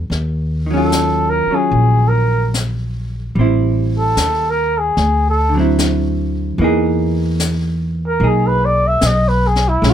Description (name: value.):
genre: jazz ballad.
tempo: 74 BPM.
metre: 4/4.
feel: swing 68% on 8ths.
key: unclear.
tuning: A4 = 440 Hz.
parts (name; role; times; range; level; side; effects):
vintage hollow-body jazz guitar; accompaniment; 0.0-9.9 s; D3 to G#4; -19 LUFS; right 2 dB; none.
upright bass; bass; 0.0-9.9 s; A1 to E2; -17 LUFS; equal; none.
jazz brush drum kit; drums; 0.1-9.9 s; brushed snare drum, hi-hat, snare drum; -23 LUFS; left 4 dB; none.
trumpet with bucket mute; melody; 0.7-9.9 s; E4 to E5; -16 LUFS; equal; none.
room: little or no reverb.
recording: close, detailed microphones.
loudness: -14 LUFS.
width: side -9 dB against mid.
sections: 0.1-9.9 A section.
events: muted trumpet solo 0.1-9.9.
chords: 0.1 Ebm9; 3.4 Am7; 5.0 D9; 6.6 Emaj7#11.